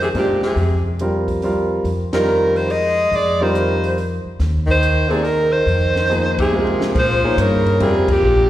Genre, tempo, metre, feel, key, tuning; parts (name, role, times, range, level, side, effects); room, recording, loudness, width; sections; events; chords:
modal jazz; 141 BPM; 3/4; swing 67% on 8ths; A4 = 439 Hz
warm alto saxophone; melody; 0.0-8.5 s; G4 to Eb5; -18 LUFS; equal; slapback echo
bright tenor saxophone; second line; 0.0-8.5 s; Bb2 to Ab3; -23 LUFS; left 2 dB; slapback echo
upright bass; bass; 0.0-8.5 s; Bb1 to Bb2; -20 LUFS; equal
compact cocktail drum kit; drums; 0.0-8.2 s; crash cymbal, hi-hat, kick drum, ride cymbal, snare drum, toms; -27 LUFS; equal
clear grand piano; accompaniment; 0.1-8.1 s; F3 to D5; -21 LUFS; right 1 dB; slapback echo
moderate club reverb, RT60 0.8 s; live gig heard through the venue's PA, recital hall reverb; -15 LUFS; side -13 dB against mid
0.0-6.9 A section; 6.9-8.5 B section
band accent 2.1, 6.3, 8.0; drum fill 6.5-6.9
0.0 Fmadd9; 1.9 Ab/F; 6.9 Bbm69